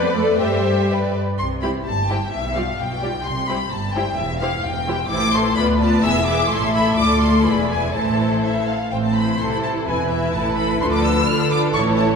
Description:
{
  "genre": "quick classical-period movement for string orchestra",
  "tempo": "128 BPM",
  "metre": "2/4",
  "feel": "rubato",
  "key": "C major, A minor from 5.1 s",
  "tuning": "A4 = 442 Hz",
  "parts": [
    { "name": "warm symphonic violin section", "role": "melody", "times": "0.0-12.1 s", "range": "D5 to F6", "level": "-23 LUFS", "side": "left 2 dB", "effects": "none" },
    { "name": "warm symphonic violin section", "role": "second line", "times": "0.0-12.2 s", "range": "G4 to E5", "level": "-24 LUFS", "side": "left 2 dB", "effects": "none" },
    { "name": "rich symphonic viola section", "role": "accompaniment", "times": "0.0-12.2 s", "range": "D3 to B4", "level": "-24 LUFS", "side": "left 1 dB", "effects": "none" },
    { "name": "rich symphonic double bass section", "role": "bass", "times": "0.0-12.2 s", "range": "E1 to D3", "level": "-23 LUFS", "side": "equal", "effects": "none" },
    { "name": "rich symphonic cello section", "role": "bass", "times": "0.1-12.2 s", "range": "D2 to D4", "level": "-25 LUFS", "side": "right 1 dB", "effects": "none" }
  ],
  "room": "wet scoring stage reverb, RT60 2.0 s",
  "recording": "heard from further back in the room",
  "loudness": "-17 LUFS",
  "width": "side -5 dB against mid",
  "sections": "0.0-1.4 A section; 1.4-8.9 B section; 8.9-12.2 C section",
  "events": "none",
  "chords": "0.4 C/G; 1.4 C; 2.3 G7/B; 3.3 C; 4.2 C/E (rootless); 5.1 Am; 5.6 Bdim/D; 6.0 E; 6.5 Am; 7.0 Dm; 7.5 E7; 7.9 Am; 9.9 E; 10.3 A5; 10.8 Dm"
}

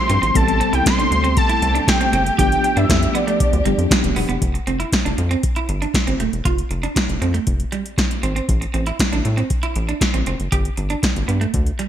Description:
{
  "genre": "early-eighties boogie funk",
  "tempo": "118 BPM",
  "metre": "4/4",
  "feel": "straight",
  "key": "unclear",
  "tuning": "A4 = 441 Hz",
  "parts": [
    { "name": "fat analog lead", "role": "melody", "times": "0.0-3.9 s", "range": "D5 to C6", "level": "-20 LUFS", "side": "equal", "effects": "chorus" },
    { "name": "tine electric piano", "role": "accompaniment", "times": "0.0-4.4 s", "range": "F3 to A4", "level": "-23 LUFS", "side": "left 2 dB", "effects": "fast stereo tremolo" },
    { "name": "bright studio string section", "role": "sustained chords", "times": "0.0-4.4 s", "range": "C3 to G4", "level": "-29 LUFS", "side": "equal", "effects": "none" },
    { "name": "electric guitar at the edge of break-up", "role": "riff", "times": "0.1-11.9 s", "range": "G3 to G4", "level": "-25 LUFS", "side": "right 5 dB", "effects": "lush chorus" },
    { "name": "rubbery square bass", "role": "bass", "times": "0.1-11.7 s", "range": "D#1 to A2", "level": "-21 LUFS", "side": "equal", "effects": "none" },
    { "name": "electro analog drum machine", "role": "drums", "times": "0.1-11.9 s", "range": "hi-hat, kick drum, snare drum", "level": "-20 LUFS", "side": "equal", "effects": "overdrive, gated reverb" }
  ],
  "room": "light reverb",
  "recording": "bright 1980s-style digital production",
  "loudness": "-16 LUFS",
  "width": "side -10 dB against mid",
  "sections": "0.0-4.4 A section; 4.4-11.9 B section",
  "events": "none",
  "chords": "0.3 Am9; 2.4 G7; 4.4 F5; 8.5 Am; 10.5 G5"
}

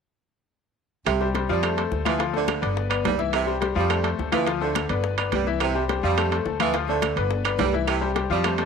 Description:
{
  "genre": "latin, salsa",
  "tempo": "211 BPM",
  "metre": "4/4",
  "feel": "straight",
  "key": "C major",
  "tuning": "A4 = 439 Hz",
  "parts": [
    { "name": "clear saxophone section", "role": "second line", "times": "1.1-8.6 s", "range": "C3 to G3", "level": "-27 LUFS", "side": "right 12 dB", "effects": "none" },
    { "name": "upright bass", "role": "bass", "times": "1.1-8.7 s", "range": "G1 to F2", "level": "-28 LUFS", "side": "equal", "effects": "none" },
    { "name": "bongos", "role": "percussion", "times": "1.1-8.7 s", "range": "none", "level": "-35 LUFS", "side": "left 10 dB", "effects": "none" },
    { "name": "claves", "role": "percussion", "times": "1.1-8.6 s", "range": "none", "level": "-35 LUFS", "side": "right 10 dB", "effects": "none" },
    { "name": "congas", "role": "percussion", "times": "1.1-8.7 s", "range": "none", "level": "-34 LUFS", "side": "left 12 dB", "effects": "none" },
    { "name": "timbales", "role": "percussion", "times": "1.1-8.7 s", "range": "none", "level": "-30 LUFS", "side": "right 13 dB", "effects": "none" },
    { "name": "bright concert grand piano", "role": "accompaniment", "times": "1.2-8.7 s", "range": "E3 to F5", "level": "-26 LUFS", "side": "left 10 dB", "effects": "none" }
  ],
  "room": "light reverb, small room ambience",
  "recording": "1960s-style stereo with parts hard left and right",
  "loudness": "-21 LUFS",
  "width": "side -6 dB against mid",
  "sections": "1.1-8.7 A section",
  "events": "none",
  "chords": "1.1 C5; 1.6 F; 2.2 Dm7; 2.8 G; 3.3 C; 3.9 F; 4.5 Dm7; 5.0 G; 5.6 C; 6.2 F; 6.7 Dm7; 7.3 G; 7.9 C"
}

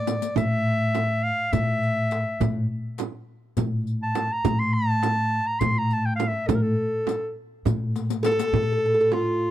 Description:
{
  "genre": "Turkish makam ensemble",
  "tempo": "206 BPM (eighths)",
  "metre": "7/8",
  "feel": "straight",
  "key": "A makam kurdi",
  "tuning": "A4 = 440 Hz",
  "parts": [
    { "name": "clear clarinet", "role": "melody", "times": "0.0-9.5 s", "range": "F4 to C6", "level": "-25 LUFS", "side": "left 1 dB", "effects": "none" },
    { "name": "upright bass", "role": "bass", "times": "0.0-9.5 s", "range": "A2", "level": "-26 LUFS", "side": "equal", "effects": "none" },
    { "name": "darbuka", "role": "percussion", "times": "0.1-9.3 s", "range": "none", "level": "-30 LUFS", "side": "left 2 dB", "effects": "none" },
    { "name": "frame drum", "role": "percussion", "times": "0.1-9.3 s", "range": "none", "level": "-29 LUFS", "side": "right 10 dB", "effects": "none" },
    { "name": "riq", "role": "percussion", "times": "0.1-8.5 s", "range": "none", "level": "-34 LUFS", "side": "left 15 dB", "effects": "none" },
    { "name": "oud", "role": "second line", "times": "8.2-9.5 s", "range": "F4 to A4", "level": "-25 LUFS", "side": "right 3 dB", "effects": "none" }
  ],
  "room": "studio ambience",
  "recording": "dry, close 1970s-style studio recording",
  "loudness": "-22 LUFS",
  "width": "side -12 dB against mid",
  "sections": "0.0-8.5 A section",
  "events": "drum fill 0.0-0.4, 8.0-8.5",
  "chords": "none"
}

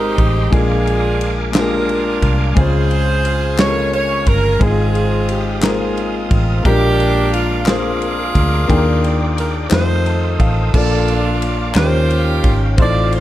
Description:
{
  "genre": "slow gospel",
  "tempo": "59 BPM (dotted quarters)",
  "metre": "6/8",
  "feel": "straight",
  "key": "unclear",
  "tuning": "A4 = 440 Hz",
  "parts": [
    { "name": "warm saxophone section", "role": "melody", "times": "0.0-13.2 s", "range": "C4 to D5", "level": "-20 LUFS", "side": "right 2 dB", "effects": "none" },
    { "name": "clear upright piano", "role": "accompaniment", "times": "0.0-13.2 s", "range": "Ab2 to A5", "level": "-20 LUFS", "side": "left 4 dB", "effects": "none" },
    { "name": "bright tonewheel organ", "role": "sustained chords", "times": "0.0-13.2 s", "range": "Ab3 to Eb6", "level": "-27 LUFS", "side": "right 2 dB", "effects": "slow rotary speaker, chorus vibrato" },
    { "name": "vintage muted fingered electric bass", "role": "bass", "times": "0.0-13.2 s", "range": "G1 to F2", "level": "-18 LUFS", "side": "equal", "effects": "none" },
    { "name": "modern studio drum kit", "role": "drums", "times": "0.2-13.2 s", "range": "crash cymbal, kick drum, ride cymbal, snare drum", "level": "-20 LUFS", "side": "equal", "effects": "none" },
    { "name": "group handclap", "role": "percussion", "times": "1.5-12.1 s", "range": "none", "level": "-25 LUFS", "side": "left 5 dB", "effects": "none" }
  ],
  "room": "studio reverb",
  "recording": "dark, warm production",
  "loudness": "-13 LUFS",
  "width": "side -14 dB against mid",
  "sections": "0.0-10.7 A section; 10.7-13.2 A section",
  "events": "upright piano fill 9.7-10.7",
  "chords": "0.0 Abmaj7; 0.5 Bb7; 2.6 Dbmaj7; 4.6 Ab6; 6.7 Bb7; 8.7 Ebmaj7; 9.7 F7; 10.7 Bbmaj7; 11.8 Eb9"
}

